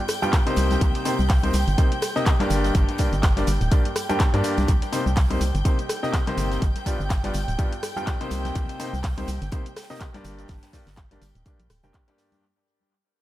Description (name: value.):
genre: piano house.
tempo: 124 BPM.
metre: 4/4.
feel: swing 57% on 16ths.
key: C minor.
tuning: A4 = 439 Hz.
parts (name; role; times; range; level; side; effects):
dark studio string section; sustained chords; 0.0-12.4 s; G5 to G6; -34 LUFS; right 1 dB; sidechain pumping.
house drum kit; drums; 0.1-12.4 s; handclaps, hi-hat, rim click, shaker; -31 LUFS; equal; tape echo.
tight funk drum kit; drums; 0.1-12.3 s; hi-hat, snare drum; -42 LUFS; right 3 dB; sidechain pumping on hats, high-pass filter on hats, high-pass filter on snare, high-pass filter on room.
tambourine and congas; percussion; 0.1-12.4 s; none; -36 LUFS; left 2 dB; tape echo.
clear baby grand piano; riff; 0.2-12.4 s; G2 to G5; -27 LUFS; left 1 dB; vintage 12-bit sampler grit, sidechain pumping, tape echo.
electronic kick drum; drums; 0.3-12.1 s; none; -22 LUFS; equal; none.
organ-like FM bass; bass; 0.6-11.9 s; D1 to G2; -24 LUFS; equal; tube saturation, sidechain pumping.
room: light reverb, small room ambience.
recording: echo-heavy mix.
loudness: -20 LUFS.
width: side -14 dB against mid.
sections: 0.0-12.4 A section.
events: drop 0.0-12.4; fade-out 4.7-12.4.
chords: 0.0 G7; 0.6 Cm7; 2.5 Gm; 4.7 Cm7; 6.6 G7; 8.3 Cm7; 10.2 Gm.